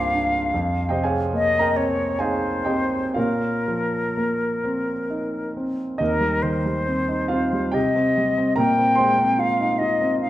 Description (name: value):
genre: classical, impressionist duo for flute and grand piano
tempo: 58-77 BPM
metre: 3/4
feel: rubato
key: Eb mixolydian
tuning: A4 = 442 Hz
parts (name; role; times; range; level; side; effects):
- bright silver concert flute; melody; 0.0-10.3 s; Bb4 to G5; -23 LUFS; left 2 dB; none
- warm concert grand piano; accompaniment; 0.0-10.3 s; C2 to Eb6; -22 LUFS; right 1 dB; none
room: wet recital hall reverb, RT60 1.4 s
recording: dark, warm production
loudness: -19 LUFS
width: side -14 dB against mid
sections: 0.0-6.0 A section; 6.0-10.3 B section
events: none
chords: 0.0 Cm11; 0.5 Fm11; 3.2 Bbsus24; 6.0 Eb6; 7.7 Cm; 8.6 Bb11